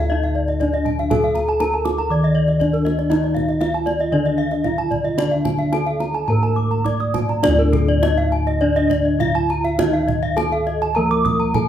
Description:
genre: Balinese gamelan.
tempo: 102-120 BPM.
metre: 4/4.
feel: straight.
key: D pelog.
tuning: A4 = 440 Hz.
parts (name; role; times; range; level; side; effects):
gamelan-type bronze metallophone; melody; 0.0-11.7 s; D4 to D5; -23 LUFS; left 1 dB; none.
gamelan-type bronze metallophone; arpeggios; 0.0-11.3 s; Bb4-40c to Eb6; -25 LUFS; right 4 dB; none.
gamelan-type bossed gongs; bass; 0.0-11.7 s; D2 to A4-45c; -21 LUFS; equal; none.
gamelan-type bronze metallophone; arpeggios; 0.1-11.7 s; A4-45c to Eb6; -23 LUFS; left 2 dB; none.
kendang; percussion; 0.2-11.7 s; none; -26 LUFS; right 4 dB; none.
gamelan-type bronze metallophone; accompaniment; 3.1-11.7 s; D3 to Bb3-40c; -28 LUFS; right 1 dB; none.
room: wet large studio reverb, RT60 0.9 s.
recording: band playing live in one room.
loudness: -16 LUFS.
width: side -10 dB against mid.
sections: 0.0-7.4 A section; 7.4-11.7 B section.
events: none.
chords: none.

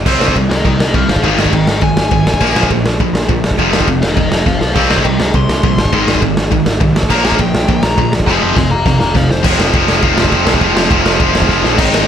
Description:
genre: punk rock.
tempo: 205 BPM.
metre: 4/4.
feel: straight.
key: unclear.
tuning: A4 = 440 Hz.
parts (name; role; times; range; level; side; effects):
modern bright picked electric bass; bass; 0.0-12.0 s; F1 to C2; -18 LUFS; equal; none.
distorted electric guitar; riff; 0.1-12.1 s; F2 to F4; -17 LUFS; left 12 dB; overdrive.
overdriven electric guitar; riff; 0.1-12.1 s; F2 to C4; -17 LUFS; right 11 dB; none.
raw garage drum kit; drums; 0.1-12.0 s; crash cymbal, kick drum, ride cymbal, snare drum; -14 LUFS; equal; none.
dark smooth lead guitar; melody; 0.5-9.4, 11.8-12.1 s; Eb4 to C6; -19 LUFS; left 4 dB; overdrive.
room: light reverb.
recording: none.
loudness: -10 LUFS.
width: side -9 dB against mid.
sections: 0.1-9.4 A section; 9.4-11.8 B section.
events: lead electric guitar solo 0.1-9.4; drum fill 4.5, 8.3-9.4, 11.5.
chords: 0.1 C5; 1.1 Ab; 2.3 Bb5; 3.6 F5; 4.8 Cm; 5.8 Ab; 7.0 Bb5; 8.3 Fm.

